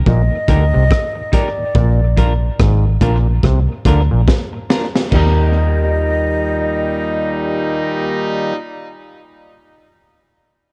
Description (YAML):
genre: roots reggae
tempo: 71 BPM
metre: 4/4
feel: swing 60% on 16ths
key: Eb major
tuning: A4 = 440 Hz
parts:
  - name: mellow silver concert flute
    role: melody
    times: 0.1-8.6 s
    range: D5 to Eb5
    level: -25 LUFS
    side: equal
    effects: tape echo
  - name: auto-wah clav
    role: riff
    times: 0.1-4.2 s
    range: Ab2 to D3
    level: -26 LUFS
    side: equal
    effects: overdrive
  - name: vintage muted fingered electric bass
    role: bass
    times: 0.1-8.5 s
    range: Ab1 to Eb2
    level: -17 LUFS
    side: equal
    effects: none
  - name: crunchy breakbeat drum kit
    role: drums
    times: 0.1-5.4 s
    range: crash cymbal, hi-hat, kick drum, rim click, snare drum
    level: -20 LUFS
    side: equal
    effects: none
  - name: tonewheel organ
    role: accompaniment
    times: 0.3-8.5 s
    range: Eb2 to Bb3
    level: -26 LUFS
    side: equal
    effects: slow rotary speaker
  - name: semi-hollow electric guitar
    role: accompaniment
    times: 0.5-8.7 s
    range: D4 to Bb4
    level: -28 LUFS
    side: equal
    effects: tape echo
  - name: clear horn section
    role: second line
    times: 5.1-8.5 s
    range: Bb2 to Eb4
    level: -26 LUFS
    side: equal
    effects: tape echo
room: light reverb, studio reverb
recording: dark, warm production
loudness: -16 LUFS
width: mono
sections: 0.0-5.1 A section; 5.1-8.5 B section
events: drum fill 4.3-5.1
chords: 0.0 Eb; 1.8 Bb; 5.1 Eb